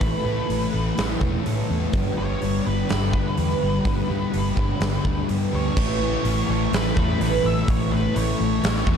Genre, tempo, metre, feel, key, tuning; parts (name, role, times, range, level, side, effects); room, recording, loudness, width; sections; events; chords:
rock, shoegaze and dream pop; 125 BPM; 4/4; straight; A mixolydian; A4 = 440 Hz
octave-fuzz lead guitar; melody; 0.0-9.0 s; B4 to E5; -31 LUFS; equal; distortion, tape echo
fingerpicked twelve-string acoustic guitar; arpeggios; 0.0-9.0 s; E3 to A4; -31 LUFS; right 8 dB; analog chorus, tape echo
raw garage guitar; riff; 0.0-9.0 s; G2 to A4; -32 LUFS; right 12 dB; overdrive, reverse reverb
sludgy distorted guitar; riff; 0.0-9.0 s; G2 to A3; -30 LUFS; equal; overdrive
thick fuzz guitar; riff; 0.0-9.0 s; G2 to A3; -28 LUFS; left 13 dB; distortion, analog chorus
vintage muted fingered electric bass; bass; 0.0-9.0 s; E1 to A2; -26 LUFS; equal
huge arena drum kit; drums; 0.0-9.0 s; crash cymbal, hi-hat, kick drum, snare drum; -26 LUFS; equal
little or no reverb; dark, warm production; -20 LUFS; side -7 dB against mid
0.0-5.8 A section; 5.8-9.0 B section
0.0 Aadd9; 1.9 G; 5.8 Aadd9